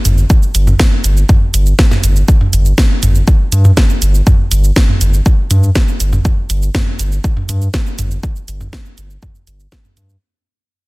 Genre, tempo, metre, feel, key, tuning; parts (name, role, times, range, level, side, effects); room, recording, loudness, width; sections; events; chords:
melodic techno; 121 BPM; 4/4; straight; A4 = 439 Hz
round analog bass; bass; 0.1-10.2 s; G1 to G2; -11 LUFS; equal; sidechain pumping
house drum kit; drums; 0.1-10.2 s; hi-hat, shaker, snare drum, toms; -16 LUFS; right 1 dB
electronic kick drum; drums; 0.3-9.8 s; -11 LUFS; equal
little or no reverb; dense, heavily limited modern master; -10 LUFS; side -22 dB against mid
0.0-10.2 A section
drop 0.0-10.2; fade-out 4.9-10.2